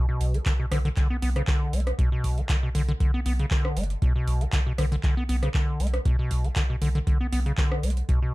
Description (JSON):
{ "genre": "acid house", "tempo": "118 BPM", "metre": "4/4", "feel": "swing 53% on 16ths", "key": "B minor", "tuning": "A4 = 445 Hz", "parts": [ { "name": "acid bass, square", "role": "riff", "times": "0.0-8.3 s", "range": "B2 to B3", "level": "-29 LUFS", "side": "equal", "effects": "cassette tape, tape echo" }, { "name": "warm sub bass", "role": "bass", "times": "0.2-8.0 s", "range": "F#1 to B1", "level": "-26 LUFS", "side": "equal", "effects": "tube saturation, sidechain pumping" }, { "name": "booming analog drum machine", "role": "drums", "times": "0.2-8.2 s", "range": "handclaps, hi-hat, rim click", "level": "-34 LUFS", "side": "right 1 dB", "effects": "overdrive" }, { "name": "electronic kick drum", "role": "drums", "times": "0.5-8.2 s", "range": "none", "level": "-25 LUFS", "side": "equal", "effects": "none" } ], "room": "little or no reverb", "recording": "dark, warm production", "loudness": "-22 LUFS", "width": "side -20 dB against mid", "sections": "0.0-8.3 A section", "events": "none", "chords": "0.0 Bm", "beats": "0.46 0.97 1.48 | 1.99 2.50 3.00 3.51 | 4.02 4.53 5.04 5.54 | 6.05 6.56 7.07 7.58 | 8.09" }